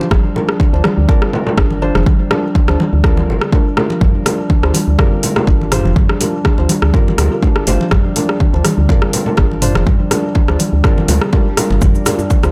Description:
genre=afro house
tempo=123 BPM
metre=4/4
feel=swing 54% on 16ths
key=G minor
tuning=A4 = 437 Hz
part: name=handpan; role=arpeggios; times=0.0-12.4 s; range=D3 to D4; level=-23 LUFS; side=equal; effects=sidechain pumping, tape echo
part: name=felt-muted upright piano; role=stabs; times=0.0-12.5 s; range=D4 to C5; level=-24 LUFS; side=equal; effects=sidechain pumping, tape echo
part: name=congas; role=percussion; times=0.0-12.5 s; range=none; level=-24 LUFS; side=equal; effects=none
part: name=woody FM bass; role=bass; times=0.1-12.5 s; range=F1 to D2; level=-17 LUFS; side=equal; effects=sidechain pumping
part: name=deep house drum kit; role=drums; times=0.1-12.5 s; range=hi-hat, rim click, toms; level=-22 LUFS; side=equal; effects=overdrive
part: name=electronic kick drum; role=drums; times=0.1-12.4 s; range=none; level=-16 LUFS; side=equal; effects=overdrive
part: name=swell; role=sound effects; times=11.3-11.8 s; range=none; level=-30 LUFS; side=equal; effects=none
part: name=cabasa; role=percussion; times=11.8-12.5 s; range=none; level=-30 LUFS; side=equal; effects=none
part: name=djembe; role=percussion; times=12.1-12.3 s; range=none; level=-26 LUFS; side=equal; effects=none
room=studio reverb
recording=none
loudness=-14 LUFS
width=mono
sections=0.0-12.5 A section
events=none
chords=0.0 Gm7

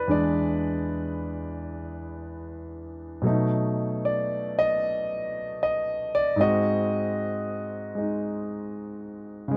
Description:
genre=solo jazz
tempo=76 BPM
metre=4/4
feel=swing 68% on 8ths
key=unclear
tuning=A4 = 440 Hz
part: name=warm concert grand piano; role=solo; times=0.0-9.6 s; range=E2 to D#5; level=-28 LUFS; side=equal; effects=none
room=light reverb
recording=close, detailed microphones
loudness=-27 LUFS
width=mono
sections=0.0-9.6 A section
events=grand piano solo 0.0-9.6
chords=0.0 E7; 3.2 B7; 6.4 G#7

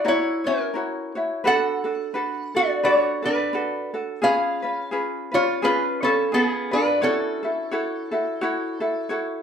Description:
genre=Hawaiian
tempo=86 BPM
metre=4/4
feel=swing 57% on 8ths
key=F# minor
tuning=A4 = 440 Hz
part: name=lap resonator guitar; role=melody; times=0.0-9.1 s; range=B3 to F#5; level=-21 LUFS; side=equal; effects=none
part: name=ukulele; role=accompaniment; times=0.0-9.4 s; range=C#4 to C#5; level=-25 LUFS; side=equal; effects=none
room=wet studio reverb, RT60 0.8 s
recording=band playing live in one room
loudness=-21 LUFS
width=side -7 dB against mid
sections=0.0-9.4 A section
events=none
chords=0.0 F#7; 1.4 Bm7; 4.2 C#7; 7.0 F#m7

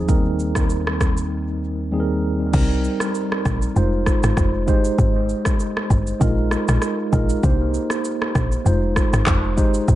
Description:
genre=afrobeats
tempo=98 BPM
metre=4/4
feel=swing 55% on 16ths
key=unclear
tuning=A4 = 440 Hz
part: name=mellow tine electric piano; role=accompaniment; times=0.0-10.0 s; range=Eb2 to C5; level=-22 LUFS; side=right 1 dB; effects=medium stereo tremolo, dub echo
part: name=deep house drum kit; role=drums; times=0.1-10.0 s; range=crash cymbal, handclaps, kick drum, rim click, shaker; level=-21 LUFS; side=equal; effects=none
part: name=woody log drum bass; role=bass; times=2.5-10.0 s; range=F1 to C2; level=-20 LUFS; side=equal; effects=none
room=light reverb, digital ambience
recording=echo-heavy mix, nothing above 10.9 kHz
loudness=-17 LUFS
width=side -14 dB against mid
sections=0.0-2.5 A section; 2.5-10.0 B section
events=break 1.3-2.5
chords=0.1 Cm7/Eb; 2.5 Cm7; 3.8 Fm7; 4.7 Abmaj7; 6.2 Bb7sus4; 7.4 Cm7; 8.7 Fm7

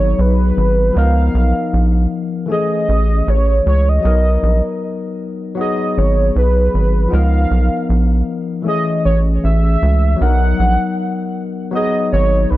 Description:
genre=lovers rock reggae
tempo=78 BPM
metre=4/4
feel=swing 56% on 16ths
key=G# dorian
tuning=A4 = 441 Hz
part: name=warm velvety synth lead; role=melody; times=0.0-12.6 s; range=B4 to F#5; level=-20 LUFS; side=right 1 dB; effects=chorus, tape echo
part: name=barky tine electric piano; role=accompaniment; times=0.0-12.6 s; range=E3 to A#4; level=-20 LUFS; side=left 3 dB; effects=phaser
part: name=rubbery square bass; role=bass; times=0.0-12.6 s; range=G#1 to C#2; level=-14 LUFS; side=equal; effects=none
room=little or no reverb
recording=dry, close 1970s-style studio recording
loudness=-13 LUFS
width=side -16 dB against mid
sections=0.0-12.6 A section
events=none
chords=0.0 G#m7; 1.0 C#13; 2.5 Amaj7; 4.0 Bmaj7; 5.6 G#m7; 7.1 C#13; 8.7 Amaj7; 10.2 Bmaj7; 11.7 G#m7

